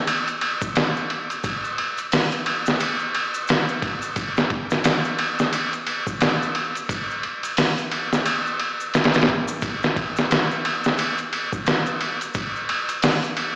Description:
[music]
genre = trip hop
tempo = 88 BPM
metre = 4/4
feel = swing 59% on 16ths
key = none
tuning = none
[part]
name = trip hop sampler-style drum kit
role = drums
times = 0.1-13.6 s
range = hi-hat, kick drum, ride cymbal, snare drum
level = -20 LUFS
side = equal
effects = none
[part]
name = egg shaker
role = percussion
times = 0.1-13.3 s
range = none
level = -39 LUFS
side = equal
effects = none
[sound]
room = moderate plate reverb, RT60 2.2 s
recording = played on a big sound system in a bare room, stone room reverb, vinyl crackle, small speaker sound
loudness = -20 LUFS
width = side -26 dB against mid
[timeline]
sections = 0.0-13.6 A section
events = none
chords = none

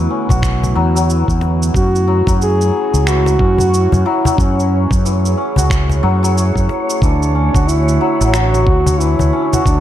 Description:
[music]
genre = organic downtempo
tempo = 91 BPM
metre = 4/4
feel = swing 60% on 16ths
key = F# minor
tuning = A4 = 440 Hz
[part]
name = warbly tape-like pad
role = sustained chords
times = 0.0-9.8 s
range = D3 to C#5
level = -23 LUFS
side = right 1 dB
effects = chorus, built-in reverb, sidechain pumping
[part]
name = santur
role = arpeggios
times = 0.0-9.8 s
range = E3 to F#4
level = -20 LUFS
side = left 4 dB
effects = digital delay
[part]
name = mellow fretless electric bass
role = bass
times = 0.0-9.8 s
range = A1 to F#2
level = -15 LUFS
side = equal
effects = none
[part]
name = electronic cabasa and finger snaps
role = drums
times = 0.3-9.8 s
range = none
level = -25 LUFS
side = right 3 dB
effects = none
[part]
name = electronic kick drum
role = drums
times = 0.3-9.8 s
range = none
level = -16 LUFS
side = equal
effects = none
[part]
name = cajon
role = percussion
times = 0.3-9.6 s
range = none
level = -19 LUFS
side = left 2 dB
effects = none
[part]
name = wind-like tuned noise texture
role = texture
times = 2.9-9.8 s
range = C#5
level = -28 LUFS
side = right 3 dB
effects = built-in reverb
[part]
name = dark duduk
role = melody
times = 1.8-9.8 s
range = C#4 to G#4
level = -17 LUFS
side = right 1 dB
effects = digital delay
[sound]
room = light reverb, digital ambience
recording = none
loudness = -12 LUFS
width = side -12 dB against mid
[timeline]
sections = 0.0-9.8 A section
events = none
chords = 0.0 E7sus4; 1.7 F#m7; 7.0 Dmaj7

